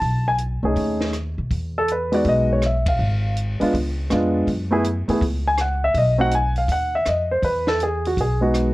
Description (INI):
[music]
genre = jazz piano trio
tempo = 162 BPM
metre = 4/4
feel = swing 65% on 8ths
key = E major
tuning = A4 = 439 Hz
[part]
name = dark grand piano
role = melody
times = 0.0-8.7 s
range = G#3 to A5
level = -20 LUFS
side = equal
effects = none
[part]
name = upright bass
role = bass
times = 0.0-8.7 s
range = G#1 to B2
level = -23 LUFS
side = equal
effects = none
[part]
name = compact cocktail drum kit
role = drums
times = 0.0-8.7 s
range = hi-hat, kick drum, ride cymbal, rim click, snare drum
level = -29 LUFS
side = equal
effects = none
[sound]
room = moderate studio reverb, RT60 0.5 s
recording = worn, warbling old tape, cassette tape, warbly pitch drift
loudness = -18 LUFS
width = side -18 dB against mid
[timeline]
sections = 0.0-1.5 A section; 1.5-8.7 B section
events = band accent 2.8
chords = 0.0 B13; 1.5 Emaj9; 3.0 N.C.; 3.7 C#7b9; 4.5 F#7sus2; 6.0 B; 7.4 Emaj7